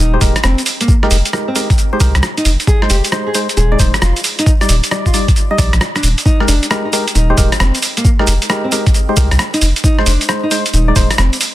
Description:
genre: UK garage, two-step garage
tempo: 134 BPM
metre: 4/4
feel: swing 65% on 16ths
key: F dorian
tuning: A4 = 441 Hz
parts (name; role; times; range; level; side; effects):
- nylon-string guitar; melody; 0.0-11.3 s; Bb3 to Ab4; -21 LUFS; equal; tape echo
- saturated sub bass; bass; 0.0-11.3 s; Eb1 to C2; -13 LUFS; equal; sidechain pumping
- percussive organ stab; stabs; 0.1-11.1 s; G3 to Eb5; -19 LUFS; left 1 dB; chorus, dub echo
- boom bap sampler-style drum kit; drums; 0.2-11.5 s; hi-hat, rim click, shaker; -17 LUFS; right 1 dB; overdrive
- electronic kick drum; drums; 0.2-11.1 s; none; -12 LUFS; equal; overdrive
room: digital ambience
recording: dense, heavily limited modern master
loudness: -11 LUFS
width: side -15 dB against mid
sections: 0.0-11.5 A section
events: none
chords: 0.0 Fm11; 2.7 Fm7; 4.2 Ebmaj7; 6.3 Fm11; 9.8 Ab6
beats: 0.44 | 0.88 1.33 1.78 2.23 | 2.67 3.12 3.57 4.02 | 4.47 4.91 5.36 5.81 | 6.26 6.70 7.15 7.60 | 8.05 8.49 8.94 9.39 | 9.84 10.29 10.73 11.18

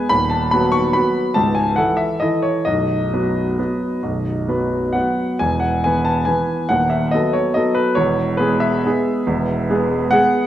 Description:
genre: classical, piano waltz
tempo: 125-150 BPM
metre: 3/4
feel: rubato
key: E major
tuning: A4 = 440 Hz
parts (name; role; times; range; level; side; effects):
- clear concert grand piano; solo; 0.0-10.5 s; B0 to C#6; -16 LUFS; equal; none
room: wet recital hall reverb, RT60 1.7 s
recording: dark, warm production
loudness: -16 LUFS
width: side -12 dB against mid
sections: 0.0-10.5 A section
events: none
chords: 0.1 B/D#; 1.4 A/C#; 2.7 B; 5.4 E; 6.7 B7/D#; 8.0 E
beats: | 0.10 0.52 0.94 | 1.36 1.77 2.22 | 2.66 3.12 3.58 | 4.03 4.48 4.95 | 5.41 5.84 6.27 | 6.70 7.12 7.55 | 7.97 8.39 8.85 | 9.28 9.70 10.12

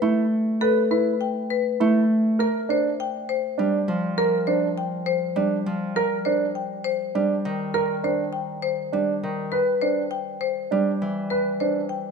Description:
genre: classical, minimalist pattern music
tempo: 101 BPM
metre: 3/4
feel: straight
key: unclear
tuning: A4 = 440 Hz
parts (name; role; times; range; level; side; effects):
- Celtic harp; accompaniment; 0.0-12.1 s; Eb3 to A3; -25 LUFS; equal; none
- warm grand piano; arpeggios; 0.0-11.8 s; D4 to B4; -25 LUFS; right 10 dB; none
- marimba with hard mallets; melody; 0.6-12.1 s; A4 to G5; -26 LUFS; left 11 dB; none
room: moderate recital hall reverb, RT60 1.5 s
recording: minimal, uncompressed stereo recording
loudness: -21 LUFS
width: side -5 dB against mid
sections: 0.0-12.1 A section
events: none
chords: 0.0 Em; 2.4 G7(no3); 6.0 Ebmaj7; 9.5 Cmaj7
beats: 0.02 | 0.61 1.21 1.80 | 2.40 2.99 3.58 | 4.18 4.77 5.37 | 5.96 6.55 7.15 | 7.74 8.34 8.93 | 9.52 10.12 10.71 | 11.31 11.90

